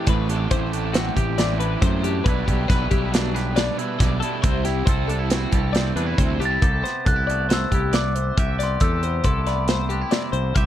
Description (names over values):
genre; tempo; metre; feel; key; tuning
math rock and midwest emo; 137 BPM; 5/4; straight; unclear; A4 = 440 Hz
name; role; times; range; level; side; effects
twangy electric guitar; accompaniment; 0.0-10.7 s; G2 to B4; -30 LUFS; right 10 dB; none
twelve-string electric guitar; arpeggios; 0.0-10.7 s; F#4 to E5; -28 LUFS; left 11 dB; analog chorus
raw garage guitar; riff; 0.0-6.6 s; A2 to E4; -28 LUFS; right 3 dB; overdrive, tremolo
growling fingered electric bass; bass; 0.1-10.7 s; A1 to F#2; -24 LUFS; equal; overdrive
modern studio drum kit; drums; 0.1-10.7 s; hi-hat, kick drum, snare drum; -22 LUFS; equal; none
glockenspiel with rubber mallets; melody; 6.5-9.9 s; B5 to A6; -26 LUFS; left 1 dB; none
room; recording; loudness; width
little or no reverb; dark, warm production; -19 LUFS; side -12 dB against mid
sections
0.0-6.6 A section; 6.6-10.7 B section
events
none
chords
0.0 Am11; 2.3 G6/B; 4.4 C6; 6.6 Am9/C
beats
| 0.07 0.51 0.95 1.38 1.82 | 2.26 2.69 3.13 3.57 4.00 | 4.44 4.88 5.31 5.75 6.19 | 6.62 7.06 7.50 7.94 8.37 | 8.81 9.25 9.69 10.13 10.57